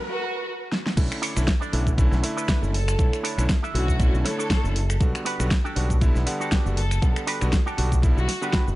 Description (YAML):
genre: nu-disco, nu disco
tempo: 119 BPM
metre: 4/4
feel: swing 55% on 16ths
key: B minor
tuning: A4 = 439 Hz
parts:
  - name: dark studio violin section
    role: melody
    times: 0.1-8.5 s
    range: F#4 to A4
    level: -32 LUFS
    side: equal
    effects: tape echo
  - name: pop drum kit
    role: drums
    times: 0.7-8.8 s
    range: cabasa, crash cymbal, finger snaps, hi-hat, snare drum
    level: -29 LUFS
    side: equal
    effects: overdrive
  - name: clear electric grand piano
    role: accompaniment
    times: 1.0-8.8 s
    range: D3 to F#5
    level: -30 LUFS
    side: equal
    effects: vintage 12-bit sampler grit, slapback echo
  - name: fingered electric bass with an envelope filter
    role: bass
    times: 1.0-8.8 s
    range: F#1 to B1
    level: -24 LUFS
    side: equal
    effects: none
  - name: electronic kick drum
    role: drums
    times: 1.0-8.6 s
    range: none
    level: -22 LUFS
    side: equal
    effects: overdrive
  - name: electric guitar with an envelope filter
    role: riff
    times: 1.2-8.7 s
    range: D4 to E5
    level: -31 LUFS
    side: right 2 dB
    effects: wide subtle chorus
room: little or no reverb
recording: nothing above 10.6 kHz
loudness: -20 LUFS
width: side -17 dB against mid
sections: 1.0-8.8 A section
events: break 0.0-1.0; drum fill 0.7; drop 1.0-8.8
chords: 0.0 N.C.; 1.0 Bm11; 5.0 Gmaj7